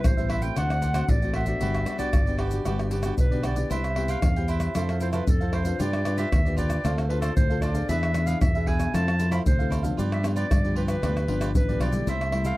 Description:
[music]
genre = samba and choro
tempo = 115 BPM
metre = 4/4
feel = straight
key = G major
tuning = A4 = 444 Hz
[part]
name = clear clarinet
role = melody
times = 0.0-12.6 s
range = G4 to B5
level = -31 LUFS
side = equal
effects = none
[part]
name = nylon-string guitar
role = accompaniment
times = 0.0-12.6 s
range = G2 to B4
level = -32 LUFS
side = left 4 dB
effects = none
[part]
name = modern bright fingered electric bass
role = bass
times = 0.0-12.5 s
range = G1 to G2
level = -26 LUFS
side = equal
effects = none
[part]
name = egg shaker, surdo, pandeiro and tamborim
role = percussion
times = 0.0-12.6 s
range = none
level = -26 LUFS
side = equal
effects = none
[part]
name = cavaquinho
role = accompaniment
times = 0.2-12.6 s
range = D4 to G5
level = -34 LUFS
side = right 6 dB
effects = none
[sound]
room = little or no reverb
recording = dry, close 1970s-style studio recording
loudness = -22 LUFS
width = side -18 dB against mid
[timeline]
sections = 0.0-3.7 A section; 3.7-12.6 B section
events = none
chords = 0.0 Cmaj7; 0.6 D7; 1.6 Gmaj7; 3.7 Cmaj7; 4.8 Fmaj7; 5.8 G7; 6.8 Dm7; 7.9 E7; 8.9 Fmaj7; 10.0 G7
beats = 0.05 0.57 1.09 | 1.62 2.14 2.66 3.19 | 3.71 4.23 4.76 5.28 | 5.80 6.33 6.85 7.37 | 7.90 8.42 8.94 9.46 | 9.99 10.51 11.03 11.56 | 12.08

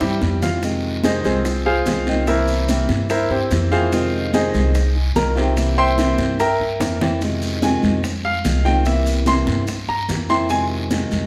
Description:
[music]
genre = latin, Cuban son and guajira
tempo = 146 BPM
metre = 4/4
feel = straight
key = F minor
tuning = A4 = 440 Hz
[part]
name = nylon-string guitar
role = accompaniment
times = 0.0-11.3 s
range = C3 to F4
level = -25 LUFS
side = equal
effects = none
[part]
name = clear concert grand piano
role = arpeggios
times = 0.0-10.6 s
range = G3 to C6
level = -23 LUFS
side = equal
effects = none
[part]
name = upright bass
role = bass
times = 0.0-11.3 s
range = C2 to G2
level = -24 LUFS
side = equal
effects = none
[part]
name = bongos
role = percussion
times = 0.0-11.3 s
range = none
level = -31 LUFS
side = equal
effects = none
[part]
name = congas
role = percussion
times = 0.0-11.3 s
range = none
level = -28 LUFS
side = equal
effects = none
[part]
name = maracas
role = percussion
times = 0.0-11.3 s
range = none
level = -38 LUFS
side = equal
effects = none
[part]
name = guiro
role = percussion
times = 0.2-11.3 s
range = none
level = -36 LUFS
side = equal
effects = none
[sound]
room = wet recital hall reverb, RT60 1.4 s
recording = recorded in a church or concert hall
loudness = -19 LUFS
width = mono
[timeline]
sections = 0.6-11.3 A section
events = drum fill 0.0-0.6, 6.8-7.2; grand piano solo 0.6-11.3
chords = 0.0 C; 0.6 Fm7; 2.3 C7; 3.9 Fm7; 5.6 C7; 7.2 Fm7; 8.9 C7; 10.5 Fm7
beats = 0.21 | 0.63 1.04 1.45 1.86 | 2.28 2.69 3.10 3.51 | 3.92 4.33 4.75 5.16 | 5.57 5.98 6.39 6.80 | 7.21 7.62 8.04 8.45 | 8.86 9.27 9.68 10.09 | 10.50 10.91

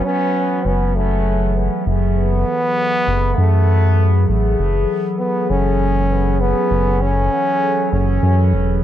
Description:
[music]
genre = ambient dub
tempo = 99 BPM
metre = 4/4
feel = swing 54% on 16ths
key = F# minor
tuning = A4 = 438 Hz
[part]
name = clear trombone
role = melody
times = 0.0-8.8 s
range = A3 to C#4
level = -19 LUFS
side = equal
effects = dub echo
[part]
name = warbly tape-like pad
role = sustained chords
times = 0.0-8.8 s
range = E3 to F#5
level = -21 LUFS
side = right 1 dB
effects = chorus, built-in reverb
[part]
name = round analog bass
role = bass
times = 0.7-8.8 s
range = E1 to F#2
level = -16 LUFS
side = equal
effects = tube saturation
[sound]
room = moderate spring reverb, RT60 2.4 s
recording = none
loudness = -14 LUFS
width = side -11 dB against mid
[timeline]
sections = 0.0-8.8 A section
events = none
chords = 0.0 F#m9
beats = 0.35 0.95 1.56 | 2.17 2.77 3.38 3.98 | 4.59 5.20 5.80 6.41 | 7.01 7.62 8.23 8.83

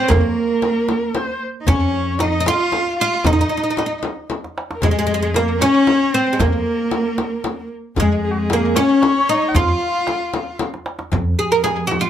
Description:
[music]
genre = Persian modal ensemble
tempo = 76 BPM (dotted quarters)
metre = 6/8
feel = straight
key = F dastgah shur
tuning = A4 = 440 Hz
[part]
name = oud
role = melody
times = 0.0-12.1 s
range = Ab3 to Bb4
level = -18 LUFS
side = equal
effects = slapback echo
[part]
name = rich cello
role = second line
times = 0.0-10.6 s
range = Ab3 to F4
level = -24 LUFS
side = right 3 dB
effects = none
[part]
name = warm kamancheh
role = second line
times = 0.0-10.6 s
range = Gb4+40c to Gb5+43c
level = -24 LUFS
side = left 2 dB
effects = none
[part]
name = upright bass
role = bass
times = 0.1-11.3 s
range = F2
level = -21 LUFS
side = equal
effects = none
[part]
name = frame drum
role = percussion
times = 0.1-12.0 s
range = none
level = -25 LUFS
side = left 4 dB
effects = none
[part]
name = tombak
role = percussion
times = 0.1-12.0 s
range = none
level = -24 LUFS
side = right 1 dB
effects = none
[part]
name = muted studio cello section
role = drone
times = 11.1-12.1 s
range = F2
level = -26 LUFS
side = right 2 dB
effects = none
[sound]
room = moderate small room ambience, RT60 0.5 s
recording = none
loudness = -16 LUFS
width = side -10 dB against mid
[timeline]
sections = 0.0-11.1 A section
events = drum fill 4.3-4.8, 10.6-11.1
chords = none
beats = | 0.10 0.89 | 1.68 2.46 | 3.25 4.04 | 4.82 5.61 | 6.40 7.19 | 7.97 8.76 | 9.55 10.34 | 11.13 11.92

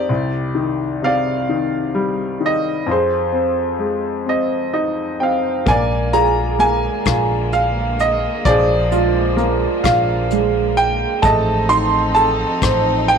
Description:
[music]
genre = acoustic folk-pop ballad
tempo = 43 BPM (dotted quarters)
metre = 6/8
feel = straight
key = unclear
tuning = A4 = 442 Hz
[part]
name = clear grand piano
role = melody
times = 0.0-13.2 s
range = C2 to C6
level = -16 LUFS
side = equal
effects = none
[part]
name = clear chamber string section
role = sustained chords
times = 5.7-13.2 s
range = D3 to Eb4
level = -26 LUFS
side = equal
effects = none
[part]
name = upright bass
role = bass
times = 5.7-13.2 s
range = A1 to Bb1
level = -22 LUFS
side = equal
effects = none
[part]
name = soft brush drum kit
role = drums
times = 5.7-13.2 s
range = hi-hat, kick drum, rim click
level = -23 LUFS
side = left 3 dB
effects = none
[part]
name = felt-muted upright piano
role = arpeggios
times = 6.1-11.7 s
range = Ab3 to Ab4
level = -21 LUFS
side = right 10 dB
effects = slapback echo
[sound]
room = light reverb, small room ambience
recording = 1960s-style stereo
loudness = -15 LUFS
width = side -6 dB against mid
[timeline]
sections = 0.0-5.7 A section; 5.7-13.2 B section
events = grand piano fill 4.3-5.7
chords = 0.1 Cmadd9; 2.9 Fm7; 5.7 Bb7; 11.2 F7/A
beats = | 0.10 1.49 | 2.88 4.27 | 5.67 7.07 | 8.46 9.85 | 11.23 12.62

